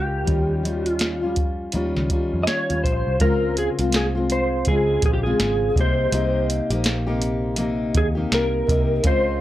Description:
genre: indie pop, bedroom pop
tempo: 82 BPM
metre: 4/4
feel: swing 60% on 16ths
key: unclear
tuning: A4 = 441 Hz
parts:
  - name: clean lap steel guitar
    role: melody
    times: 0.0-9.4 s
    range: G4 to Eb5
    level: -24 LUFS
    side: equal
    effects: ensemble chorus, analog delay
  - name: fingerpicked steel-string acoustic guitar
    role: accompaniment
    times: 0.0-9.4 s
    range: C3 to G4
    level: -24 LUFS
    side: left 2 dB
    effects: wide subtle chorus, vibrato effect
  - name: vintage muted picked electric bass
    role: bass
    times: 0.0-9.4 s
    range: Ab1 to F2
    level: -25 LUFS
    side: equal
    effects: tube saturation
  - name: soft vintage rhythm box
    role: drums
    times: 0.3-9.3 s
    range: hi-hat, kick drum, snare drum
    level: -23 LUFS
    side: right 1 dB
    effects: none
room: little or no reverb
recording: dry, gritty hardware recording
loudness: -19 LUFS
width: side -14 dB against mid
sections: 0.0-3.2 A section; 3.2-9.4 B section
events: none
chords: 0.3 Eb9; 3.2 Dbmaj7; 5.8 Cm7

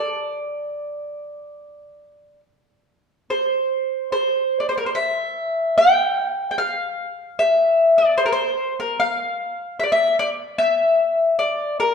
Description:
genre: fado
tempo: 74 BPM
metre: 4/4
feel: rubato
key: unclear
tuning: A4 = 440 Hz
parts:
  - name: mandolin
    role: solo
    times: 0.0-11.9 s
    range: Bb4 to G5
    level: -18 LUFS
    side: left 1 dB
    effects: none
room: wet recital hall reverb, RT60 1.4 s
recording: dark, warm production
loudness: -18 LUFS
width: side -6 dB against mid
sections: 0.0-3.3 A section; 3.3-11.9 B section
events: none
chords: none

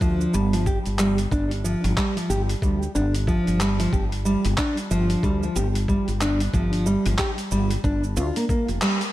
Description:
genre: organic downtempo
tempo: 92 BPM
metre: 4/4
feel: swing 60% on 16ths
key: G minor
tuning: A4 = 440 Hz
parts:
  - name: nylon-string guitar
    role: arpeggios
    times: 0.0-9.0 s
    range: F3 to G4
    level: -23 LUFS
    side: equal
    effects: analog delay
  - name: woody fretless electric bass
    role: bass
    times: 0.0-8.8 s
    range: F1 to D2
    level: -24 LUFS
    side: equal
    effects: analog chorus, sidechain pumping
  - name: dusty soul sampler-style drum kit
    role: drums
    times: 0.0-9.1 s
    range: cabasa, handclaps, hi-hat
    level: -31 LUFS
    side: equal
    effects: none
  - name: electronic kick drum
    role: drums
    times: 0.0-8.6 s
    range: none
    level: -25 LUFS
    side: equal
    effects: none
room: light reverb, digital ambience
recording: none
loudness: -20 LUFS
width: side -15 dB against mid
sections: 0.0-9.1 A section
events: band accent 8.8-9.1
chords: 0.0 G7(no3)

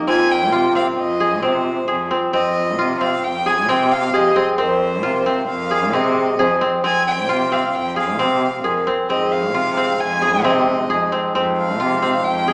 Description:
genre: contemporary instrumental, chamber music in an uneven meter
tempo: 133 BPM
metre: 5/4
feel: straight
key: F minor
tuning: A4 = 438 Hz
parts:
  - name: vibraphone with soft mallets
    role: second line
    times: 0.0-12.5 s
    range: F4 to C5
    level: -26 LUFS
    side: equal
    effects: none
  - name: warm woodwind section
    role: sustained chords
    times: 0.0, 9.1-12.5 s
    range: F3 to Eb4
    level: -31 LUFS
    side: equal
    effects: none
  - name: kora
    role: arpeggios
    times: 0.0-12.5 s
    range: Bb3 to Ab4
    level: -22 LUFS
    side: equal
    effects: none
  - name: warm violin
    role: melody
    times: 0.1-12.5 s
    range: C5 to Ab5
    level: -24 LUFS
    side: equal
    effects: none
  - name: warm cello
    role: bass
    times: 0.1-12.5 s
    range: F2 to C3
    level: -26 LUFS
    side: equal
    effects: none
room: wet recital hall reverb, RT60 1.4 s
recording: recorded in a church or concert hall, small speaker sound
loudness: -18 LUFS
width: mono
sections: 0.1-12.5 A section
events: none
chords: 0.1 Fm7

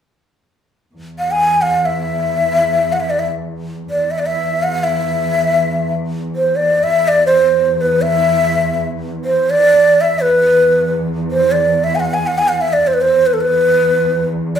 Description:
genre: Persian modal ensemble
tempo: free time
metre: none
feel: none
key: E dastgah homayun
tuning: A4 = 441 Hz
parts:
  - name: muted studio cello section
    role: drone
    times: 1.0-14.6 s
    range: E2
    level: -22 LUFS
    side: right 1 dB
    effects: none
  - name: breathy ney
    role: melody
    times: 1.2-14.6 s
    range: A4 to G#5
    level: -13 LUFS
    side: equal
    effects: none
room: moderate large studio reverb, RT60 0.9 s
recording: band playing live in one room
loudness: -12 LUFS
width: side -8 dB against mid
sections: 0.9-14.6 A section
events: none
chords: none

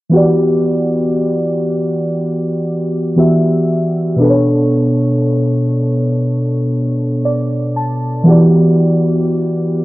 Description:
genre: R&B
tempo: 59 BPM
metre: 4/4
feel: straight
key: E minor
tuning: A4 = 440 Hz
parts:
  - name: muted felt-like synth keys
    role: accompaniment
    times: 0.1-9.8 s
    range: B2 to A5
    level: -12 LUFS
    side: equal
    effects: chorus
room: moderate concert hall reverb, RT60 2.0 s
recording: worn, warbling old tape, cassette tape, warbly pitch drift, low-pass filter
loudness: -12 LUFS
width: side -18 dB against mid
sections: 0.1-9.8 A section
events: synth keys fill 6.7-8.3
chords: 0.1 Em9; 4.2 Bm9; 8.3 Em9

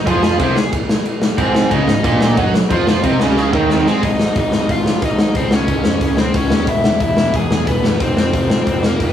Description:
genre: punk rock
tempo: 181 BPM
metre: 4/4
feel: straight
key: Ab major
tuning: A4 = 440 Hz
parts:
  - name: biting lead guitar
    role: melody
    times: 0.0-9.1 s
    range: Ab3 to Ab5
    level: -21 LUFS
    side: left 1 dB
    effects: overdrive
  - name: distorted electric guitar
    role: riff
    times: 0.1-4.0 s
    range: Ab2 to Ab3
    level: -20 LUFS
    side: right 6 dB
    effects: overdrive
  - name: overdriven semi-hollow guitar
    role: riff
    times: 0.1-9.1 s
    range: E2 to Db4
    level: -24 LUFS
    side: left 6 dB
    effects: none
  - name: raw garage guitar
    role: riff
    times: 0.1-4.0 s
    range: Ab2 to Ab3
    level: -20 LUFS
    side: right 2 dB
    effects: overdrive
  - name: fuzz picked electric bass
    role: bass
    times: 0.1-9.1 s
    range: E1 to Ab2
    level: -21 LUFS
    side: right 1 dB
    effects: overdrive
  - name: big rock drum kit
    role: drums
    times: 0.1-9.1 s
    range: crash cymbal, hi-hat, kick drum, snare drum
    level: -17 LUFS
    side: left 1 dB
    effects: none
room: light reverb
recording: rough rehearsal-room recording, small room reverb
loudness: -13 LUFS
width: side -10 dB against mid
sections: 0.0-4.0 A section; 4.0-9.1 B section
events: drum fill 3.4-4.0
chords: 0.0 Ab; 4.0 Ab5; 5.4 Db5; 6.7 E; 8.0 Fm

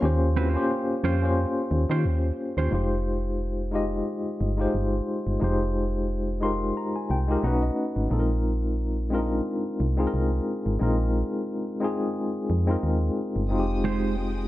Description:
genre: R&B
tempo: 89 BPM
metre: 4/4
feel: swing 55% on 16ths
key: F minor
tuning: A4 = 440 Hz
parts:
  - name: mellow tine electric piano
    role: accompaniment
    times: 0.0-14.5 s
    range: Ab3 to C6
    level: -26 LUFS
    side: left 1 dB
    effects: medium tremolo
  - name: solid FM bass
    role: bass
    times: 0.0-14.5 s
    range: F1 to Eb3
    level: -25 LUFS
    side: equal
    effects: none
  - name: mellow electric guitar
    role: second line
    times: 0.4-2.7, 13.8-14.2 s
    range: Ab3 to C5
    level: -30 LUFS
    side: right 6 dB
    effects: spring reverb
  - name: warm studio string section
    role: sustained chords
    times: 13.5-14.5 s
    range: Ab3 to Eb6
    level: -42 LUFS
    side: left 2 dB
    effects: none
room: light reverb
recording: dark, warm production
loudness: -23 LUFS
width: side -16 dB against mid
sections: 0.0-2.7 A section; 2.7-14.5 B section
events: tine electric piano fill 6.1-8.1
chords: 0.0 Eb13; 2.7 Fm9; 7.4 B9; 8.1 Bb7sus4; 13.5 Fm9

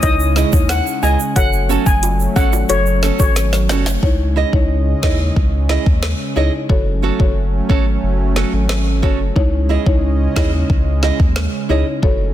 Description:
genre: dancehall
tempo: 90 BPM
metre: 4/4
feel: straight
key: C# minor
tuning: A4 = 439 Hz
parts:
  - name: steel pan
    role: melody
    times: 0.0-3.3 s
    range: C#5 to G#5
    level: -20 LUFS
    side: left 3 dB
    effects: ping-pong delay
  - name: buzzing marimba with soft mallets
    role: accompaniment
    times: 0.0-12.3 s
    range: D#4 to C#5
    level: -23 LUFS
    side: left 5 dB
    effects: none
  - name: warm analog pad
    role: sustained chords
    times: 0.0-12.3 s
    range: C#3 to D#5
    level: -24 LUFS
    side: right 1 dB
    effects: chorus, sidechain pumping
  - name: warm sub bass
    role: bass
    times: 0.0-12.3 s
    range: F#1 to D#2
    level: -18 LUFS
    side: equal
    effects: none
  - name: afro-pop drum kit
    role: drums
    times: 0.0-12.2 s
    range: hi-hat, kick drum, snare drum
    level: -17 LUFS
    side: equal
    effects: soft clipping on snare
  - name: tube shaker and timbales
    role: percussion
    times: 0.0-4.0 s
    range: none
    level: -28 LUFS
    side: right 12 dB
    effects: none
  - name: nylon-string guitar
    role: arpeggios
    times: 0.4-11.9 s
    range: C#4 to D#5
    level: -23 LUFS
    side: right 10 dB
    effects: none
room: studio ambience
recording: dense, heavily limited modern master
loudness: -13 LUFS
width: side -12 dB against mid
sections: 0.0-4.0 A section; 4.0-12.3 B section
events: drum fill 3.4-4.0; hi-hats muted 4.0-12.3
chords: 0.0 C#madd9; 1.4 F#m; 4.0 C#madd9; 6.7 F#m; 9.4 C#madd9

